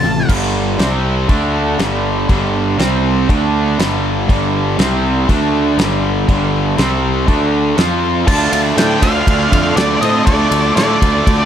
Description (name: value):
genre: classic rock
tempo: 120 BPM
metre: 4/4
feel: straight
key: unclear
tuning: A4 = 438 Hz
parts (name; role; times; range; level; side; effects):
- octave-fuzz lead guitar; melody; 0.0-0.3, 8.3-11.5 s; D5 to A5; -17 LUFS; equal; distortion
- crunchy overdriven guitar; riff; 0.0-11.5 s; G2 to F4; -20 LUFS; right 9 dB; none
- sludgy distorted guitar; riff; 0.0-11.5 s; G2 to F4; -21 LUFS; left 1 dB; overdrive
- tight distorted guitar; riff; 0.0-11.5 s; F2 to F4; -20 LUFS; left 8 dB; distortion
- fuzz picked electric bass; bass; 0.0-11.5 s; G1 to A2; -18 LUFS; equal; overdrive
- damped 70s drum kit; drums; 0.3-11.4 s; crash cymbal, kick drum, ride cymbal, snare drum; -18 LUFS; equal; none
- octave-fuzz lead guitar; second line; 8.3-11.5 s; A3 to F4; -23 LUFS; right 4 dB; distortion
room: light reverb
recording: none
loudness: -12 LUFS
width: side -9 dB against mid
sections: 0.3-8.3 A section; 8.3-11.5 B section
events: none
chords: 0.3 G5; 0.8 C5; 1.3 D5; 1.8 G5; 2.8 C5; 3.3 D5; 3.8 G5; 4.8 C5; 5.3 D5; 5.8 G5; 6.8 C5; 7.3 D5; 7.8 F5; 8.3 Dm